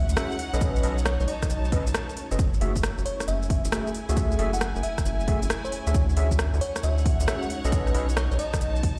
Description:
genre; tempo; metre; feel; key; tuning
UK garage, two-step garage; 135 BPM; 4/4; swing 66% on 16ths; F# minor; A4 = 440 Hz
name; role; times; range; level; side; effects
bell-like FM electric piano; melody; 0.0-8.8 s; C#5 to F#5; -37 LUFS; equal; chorus, phaser, tape echo
ethereal airy pad; sustained chords; 0.1-9.0 s; G#3 to G#4; -43 LUFS; equal; none
rubbery square bass; bass; 0.0-9.0 s; F#1 to D2; -28 LUFS; equal; none
warm studio string section; texture; 0.0-9.0 s; D#4 to A5; -39 LUFS; equal; sidechain pumping
house drum kit; drums; 0.1-9.0 s; hi-hat, rim click, shaker; -34 LUFS; equal; none
overdriven tine electric piano; stabs; 0.2-8.1 s; A3 to E5; -34 LUFS; equal; ensemble chorus, tape echo
electronic kick drum; drums; 0.6-9.0 s; none; -28 LUFS; equal; overdrive
room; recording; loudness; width
digital ambience; played on a big sound system in a bare room, large studio reverb; -25 LUFS; mono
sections
0.0-9.0 A section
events
none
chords
0.4 B9; 2.4 F#m9; 5.9 Dmaj9#11; 7.5 B9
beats
0.17 | 0.61 1.06 1.50 1.95 | 2.39 2.83 3.28 3.72 | 4.17 4.61 5.06 5.50 | 5.95 6.39 6.83 7.28 | 7.72 8.17 8.61

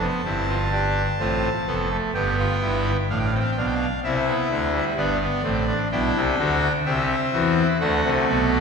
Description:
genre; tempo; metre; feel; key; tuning
classical, baroque-style 4-part fugue for pipe organ; 64 BPM; 3/4; straight; C major; A4 = 440 Hz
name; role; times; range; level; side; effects
pipe organ, trumpet; solo; 0.0-8.6 s; F1 to A5; -20 LUFS; equal; none
room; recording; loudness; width
wet concert hall reverb, RT60 1.8 s; heard from further back in the room; -20 LUFS; side -5 dB against mid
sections
0.0-8.6 A section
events
none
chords
0.0 C; 1.2 F/A; 2.1 G7; 4.0 C; 5.0 G; 6.9 C; 7.8 D7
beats
0.26 1.21 | 2.15 3.10 4.04 | 4.97 5.92 6.86 | 7.81

